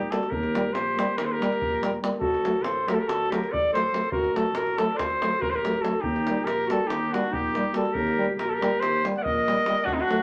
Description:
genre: balkan folk, Balkan brass band.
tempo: 283 BPM (eighths).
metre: 9/8.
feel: straight.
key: unclear.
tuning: A4 = 442 Hz.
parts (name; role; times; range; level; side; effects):
clear flugelhorn; melody; 0.0-10.2 s; Eb4 to F#5; -28 LUFS; equal; none.
warm clarinet; second line; 0.0-10.2 s; C4 to D5; -33 LUFS; equal; none.
mellow tuba; bass; 0.0-10.2 s; A1 to Eb2; -36 LUFS; equal; none.
dark trombone; accompaniment; 0.1-10.2 s; A3 to Bb3; -34 LUFS; equal; none.
warm euphonium; accompaniment; 0.1-10.2 s; F#3 to G3; -34 LUFS; equal; none.
davul; percussion; 0.1-10.2 s; none; -37 LUFS; equal; none.
room: wet club reverb, RT60 0.5 s.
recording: none.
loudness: -25 LUFS.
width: mono.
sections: 0.0-10.2 A section.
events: none.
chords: 0.0 Eb; 2.2 D; 6.0 Eb.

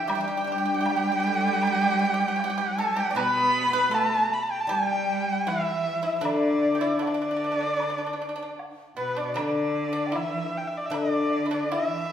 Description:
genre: chinese traditional, Chinese chamber ensemble.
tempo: 78 BPM.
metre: 4/4.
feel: rubato.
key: G gong mode.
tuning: A4 = 442 Hz.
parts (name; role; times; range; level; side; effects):
dark erhu; melody; 0.0-12.1 s; B4 to B5; -27 LUFS; equal; none.
breathy bright low xiao; second line; 0.0-12.1 s; B4 to B5; -31 LUFS; left 3 dB; none.
pipa; second line; 0.0-12.1 s; B3 to D5; -32 LUFS; right 3 dB; none.
rich cello; second line; 0.0-12.1 s; B2 to B3; -31 LUFS; right 3 dB; none.
guzheng; accompaniment; 0.0-12.1 s; B2 to D5; -30 LUFS; left 2 dB; none.
woodblock; percussion; 0.1-11.9 s; none; -37 LUFS; equal; none.
room: wet recital hall reverb, RT60 1.5 s.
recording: recorded in a church or concert hall.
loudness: -23 LUFS.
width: side -9 dB against mid.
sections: 0.0-12.1 A section.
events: none.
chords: none.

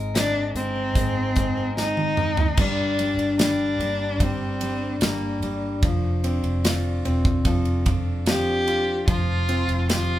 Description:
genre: pop ballad.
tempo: 74 BPM.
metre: 4/4.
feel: straight.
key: unclear.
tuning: A4 = 439 Hz.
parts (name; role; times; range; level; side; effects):
warm concert grand piano; accompaniment; 0.0-10.2 s; F3 to F4; -29 LUFS; equal; none.
picked steel-string acoustic guitar; arpeggios; 0.0-10.2 s; G2 to Bb4; -31 LUFS; left 2 dB; none.
vintage muted fingered electric bass; bass; 0.0-10.2 s; E1 to Ab1; -27 LUFS; equal; none.
rich cello; melody; 0.1-10.2 s; Bb3 to G4; -25 LUFS; left 1 dB; none.
modern studio drum kit; drums; 0.2-10.1 s; crash cymbal, hi-hat, kick drum, ride cymbal, snare drum, toms; -24 LUFS; equal; none.
room: moderate studio reverb, RT60 0.6 s.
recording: band playing live in one room.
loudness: -20 LUFS.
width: side -13 dB against mid.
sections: 0.0-2.6 A section; 2.6-10.2 B section.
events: drum fill 1.8-2.6.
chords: 0.0 Abadd9; 2.6 Gm; 5.8 Dm7; 9.1 Fsus2.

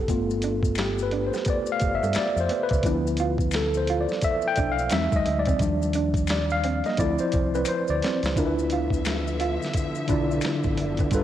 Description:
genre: R&B, neo-soul.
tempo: 87 BPM.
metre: 4/4.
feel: swing 61% on 16ths.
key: D dorian.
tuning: A4 = 440 Hz.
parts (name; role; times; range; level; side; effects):
electric guitar through a small old amp; second line; 0.0-11.1 s; A3 to F4; -33 LUFS; right 8 dB; cassette tape.
tine electric piano; accompaniment; 0.0-11.2 s; D3 to G5; -25 LUFS; left 1 dB; medium stereo tremolo, cassette tape.
deep dub fingered electric bass; bass; 0.0-11.2 s; F#1 to G2; -29 LUFS; equal; transformer saturation.
boom bap sampler-style drum kit; drums; 0.1-11.2 s; finger snaps, hi-hat, kick drum, snare drum; -28 LUFS; equal; cassette tape.
maracas and finger snaps; percussion; 0.1-11.2 s; none; -40 LUFS; left 9 dB; none.
dark studio string section; sustained chords; 8.3-11.2 s; D3 to E5; -34 LUFS; equal; cassette tape.
room: light reverb.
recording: home recording on cassette.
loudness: -22 LUFS.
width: side -11 dB against mid.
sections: 0.0-8.4 A section; 8.4-11.2 B section.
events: tine electric piano solo 0.0-8.4; drum fill 7.7-8.4.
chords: 0.1 G7; 2.8 Dm69; 4.9 Emaj7; 5.6 Ebmaj7; 7.0 Dm9; 8.4 Dm69.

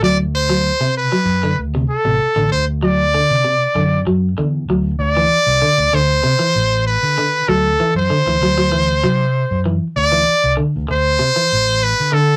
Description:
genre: afrobeat.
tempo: 97 BPM.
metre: 4/4.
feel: straight.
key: D mixolydian.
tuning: A4 = 440 Hz.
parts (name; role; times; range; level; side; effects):
brilliant trumpet; melody; 0.0-12.4 s; A4 to D5; -18 LUFS; equal; none.
electric guitar at the edge of break-up; arpeggios; 0.0-12.3 s; C3 to F#3; -21 LUFS; equal; warbly pitch drift.
fingered electric bass; bass; 0.0-12.4 s; A1 to D3; -22 LUFS; equal; none.
room: wet booth ambience, RT60 0.2 s.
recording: rough rehearsal-room recording, tube saturation.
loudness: -16 LUFS.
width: mono.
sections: 0.0-5.0 A section; 5.0-12.4 B section.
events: none.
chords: 0.0 D7.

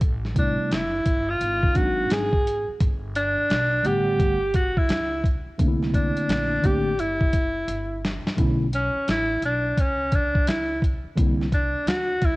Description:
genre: hip hop, jazz-hop.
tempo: 86 BPM.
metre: 4/4.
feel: swing 63% on 16ths.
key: B minor.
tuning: A4 = 440 Hz.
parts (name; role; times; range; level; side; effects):
upright bass; bass; 0.0-12.4 s; F#1 to D2; -30 LUFS; equal; none.
dusty soul sampler-style drum kit; drums; 0.0-12.4 s; hi-hat, kick drum, snare drum; -23 LUFS; equal; none.
mellow tine electric piano; accompaniment; 0.3-11.5 s; C3 to F#5; -26 LUFS; equal; medium stereo tremolo.
clear alto saxophone; melody; 0.4-12.4 s; C#4 to G#4; -24 LUFS; equal; cassette tape.
room: light reverb, digital ambience.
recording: home recording on cassette.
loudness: -20 LUFS.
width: side -21 dB against mid.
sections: 0.0-8.4 A section; 8.4-12.4 B section.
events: drum fill 7.7-8.4; alto saxophone solo 8.4-12.4.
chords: 0.0 Am9; 1.4 G#7#11; 2.8 Gmaj9; 5.6 C13; 8.4 Bm11; 11.2 C9.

